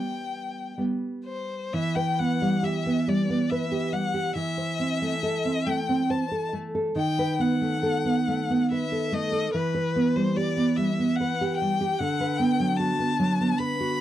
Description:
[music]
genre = romantic duo for violin and classical guitar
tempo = 60-75 BPM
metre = 3/4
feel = rubato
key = E minor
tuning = A4 = 439 Hz
[part]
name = rich violin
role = melody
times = 0.0-14.0 s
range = B4 to B5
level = -29 LUFS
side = left 5 dB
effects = none
[part]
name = nylon-string guitar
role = accompaniment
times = 0.0-14.0 s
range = D3 to C5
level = -25 LUFS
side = right 1 dB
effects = none
[sound]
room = light reverb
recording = dry, close 1970s-style studio recording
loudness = -23 LUFS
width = side -12 dB against mid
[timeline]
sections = 0.0-1.7 A section; 1.7-14.0 A section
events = none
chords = 0.0 Em (rootless); 1.7 Em; 4.4 Am/E; 7.0 B7/D#; 9.5 Em; 12.0 Bm/D

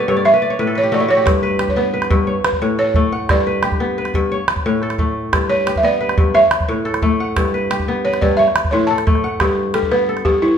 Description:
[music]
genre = west african traditional, West African string and xylophone music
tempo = 118 BPM (dotted quarters)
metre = 12/8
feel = straight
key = G lydian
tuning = A4 = 441 Hz
[part]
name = balafon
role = melody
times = 0.0-10.6 s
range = E4 to A5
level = -16 LUFS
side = right 1 dB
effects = none
[part]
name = kora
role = arpeggios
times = 0.0-10.6 s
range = G2 to G5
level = -18 LUFS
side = left 2 dB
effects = none
[part]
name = calabash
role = percussion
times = 1.3-10.3 s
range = none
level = -19 LUFS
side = right 1 dB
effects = none
[sound]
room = moderate large studio reverb, RT60 1.1 s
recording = band playing live in one room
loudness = -14 LUFS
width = side -8 dB against mid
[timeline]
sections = 0.0-9.4 A section; 9.4-10.6 B section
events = kora fill 0.0-1.3; balafon solo 0.0-9.4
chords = 0.2 N.C.; 1.3 G; 2.3 A; 3.3 G; 4.3 A; 5.3 G; 6.3 A; 7.4 G; 8.4 A; 9.4 G

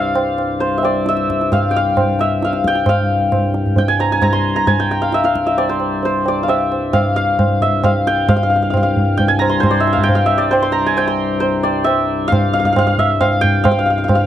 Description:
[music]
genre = indian classical, Hindustani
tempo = 133 BPM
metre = 3/4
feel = straight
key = C raga charukeshi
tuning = A4 = 440 Hz
[part]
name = santur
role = melody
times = 0.0-14.3 s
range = C5 to C6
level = -16 LUFS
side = equal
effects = none
[part]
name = pedal harmonium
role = drone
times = 0.0-14.3 s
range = C2 to G2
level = -22 LUFS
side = left 3 dB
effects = none
[part]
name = tabla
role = percussion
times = 0.2-14.3 s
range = none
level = -17 LUFS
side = right 1 dB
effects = none
[sound]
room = little or no reverb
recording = dry, close 1970s-style studio recording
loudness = -13 LUFS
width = side -11 dB against mid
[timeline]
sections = 0.0-8.3 A section; 8.3-14.3 B section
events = none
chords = none

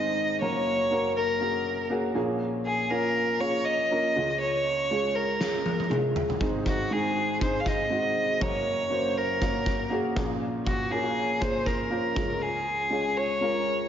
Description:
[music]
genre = piano-driven pop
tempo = 120 BPM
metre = 4/4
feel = swing 56% on 16ths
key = Db major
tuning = A4 = 441 Hz
[part]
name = warm violin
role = melody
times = 0.0-13.9 s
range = Gb4 to F5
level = -27 LUFS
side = equal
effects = none
[part]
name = warm upright piano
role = accompaniment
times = 0.0-13.9 s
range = Gb1 to Db5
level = -28 LUFS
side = equal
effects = lush chorus
[part]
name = loose indie drum kit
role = drums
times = 5.4-12.3 s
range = kick drum, snare drum, toms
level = -31 LUFS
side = equal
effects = none
[sound]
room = wet lush hall reverb, RT60 1.9 s, studio reverb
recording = dreamy mix soaked in reverb, nothing above 7.5 kHz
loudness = -24 LUFS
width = side -9 dB against mid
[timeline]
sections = 0.0-13.9 A section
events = drum fill 5.4-6.4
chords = 0.4 Gb; 2.2 Bbm7; 4.2 Db; 6.4 Ab; 8.4 Gb; 10.2 Bbm7; 12.2 Db

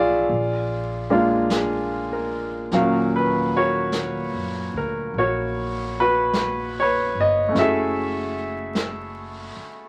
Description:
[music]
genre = jazz ballad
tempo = 50 BPM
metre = 4/4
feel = swing 67% on 8ths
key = Eb minor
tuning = A4 = 435 Hz
[part]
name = clear grand piano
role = accompaniment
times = 0.0-9.9 s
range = Bb2 to F5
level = -23 LUFS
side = equal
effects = none
[part]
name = upright bass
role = bass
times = 0.0-9.6 s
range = Gb1 to Gb2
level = -35 LUFS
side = equal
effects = none
[part]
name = vintage brush drum kit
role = drums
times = 0.3-9.9 s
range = brushed snare drum, hi-hat, snare drum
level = -34 LUFS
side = equal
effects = none
[sound]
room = moderate studio ambience, RT60 0.5 s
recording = vinyl crackle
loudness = -23 LUFS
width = mono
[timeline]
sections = 0.0-2.7 A section; 2.7-9.9 B section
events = none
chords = 0.3 A#7; 2.7 Ebm7; 7.5 Gbm9

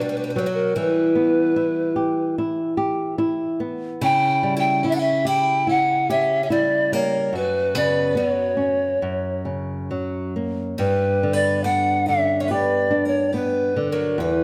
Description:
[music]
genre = fado-style ballad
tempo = 72 BPM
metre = 4/4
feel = rubato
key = unclear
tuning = A4 = 440 Hz
[part]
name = mellow hollow polished pan flute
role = melody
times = 0.0-14.4 s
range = A#4 to G5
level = -23 LUFS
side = equal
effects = none
[part]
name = picked twelve-string acoustic guitar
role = second line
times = 0.0-14.4 s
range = F#3 to E4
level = -32 LUFS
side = equal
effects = none
[part]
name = flamenco guitar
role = accompaniment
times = 0.0-14.4 s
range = E2 to G4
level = -25 LUFS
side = equal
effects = none
[sound]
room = light reverb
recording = close, detailed microphones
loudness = -21 LUFS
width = mono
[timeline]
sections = 0.0-14.4 A section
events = none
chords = 0.0 Bm; 0.8 Em; 4.0 C#dim; 7.3 F#sus4; 9.0 F#; 10.8 G

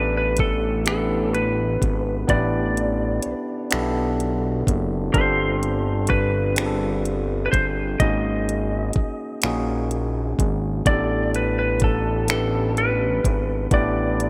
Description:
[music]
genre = slow six-eight R&B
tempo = 42 BPM (dotted quarters)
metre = 6/8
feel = straight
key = unclear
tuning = A4 = 440 Hz
[part]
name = lightly driven lead guitar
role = melody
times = 0.0-14.3 s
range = A4 to D#5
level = -27 LUFS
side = equal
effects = none
[part]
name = overdriven tine electric piano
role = accompaniment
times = 0.0-14.3 s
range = A#3 to B4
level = -28 LUFS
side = equal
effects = none
[part]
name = fat analog bass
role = bass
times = 0.0-14.3 s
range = F#1 to B1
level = -27 LUFS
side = equal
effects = none
[part]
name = smooth R&B drum kit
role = drums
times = 0.4-14.3 s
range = finger snaps, hi-hat, kick drum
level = -25 LUFS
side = equal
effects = none
[sound]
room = light reverb, digital ambience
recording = bright 1980s-style digital production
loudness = -22 LUFS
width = mono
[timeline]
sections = 0.0-14.3 A section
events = none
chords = 0.0 A9sus4; 5.1 G9sus4; 8.0 G#9sus4; 10.9 A9sus4

